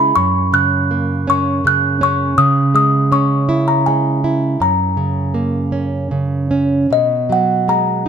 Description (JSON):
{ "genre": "children's music, lullaby", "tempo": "80 BPM", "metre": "3/4", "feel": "rubato", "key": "unclear", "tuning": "A4 = 441 Hz", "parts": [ { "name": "music box", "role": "melody", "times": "0.0-8.1 s", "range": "D#5 to F#6", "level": "-16 LUFS", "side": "left 2 dB", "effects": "none" }, { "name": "nylon-string guitar", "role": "accompaniment", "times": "0.0-8.1 s", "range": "F#2 to E4", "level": "-16 LUFS", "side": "right 2 dB", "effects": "none" } ], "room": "moderate recital hall reverb, RT60 1.7 s", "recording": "close, detailed microphones", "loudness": "-13 LUFS", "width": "side -7 dB against mid", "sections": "0.0-6.9 A section; 6.9-8.1 B section", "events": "none", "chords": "0.2 F#; 2.4 C#m; 4.6 F#; 6.9 B6", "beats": "| 0.16 0.91 1.66 | 2.38 3.11 3.86 | 4.60 5.35 6.12 | 6.90 7.67" }